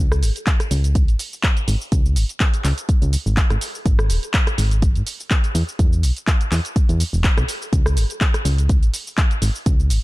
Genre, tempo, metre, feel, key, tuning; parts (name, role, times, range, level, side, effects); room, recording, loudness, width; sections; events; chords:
piano house; 124 BPM; 4/4; swing 54% on 16ths; C# minor; A4 = 439 Hz
solid FM bass; bass; 0.0-10.0 s; D#1 to G#2; -18 LUFS; equal; sidechain pumping
punchy analog drum machine; drums; 0.1-10.0 s; handclaps, hi-hat, rim click, shaker; -25 LUFS; equal
electronic kick drum; drums; 0.5-9.8 s; -17 LUFS; equal; overdrive
little or no reverb; dark, warm production; -17 LUFS; side -20 dB against mid
0.0-10.0 A section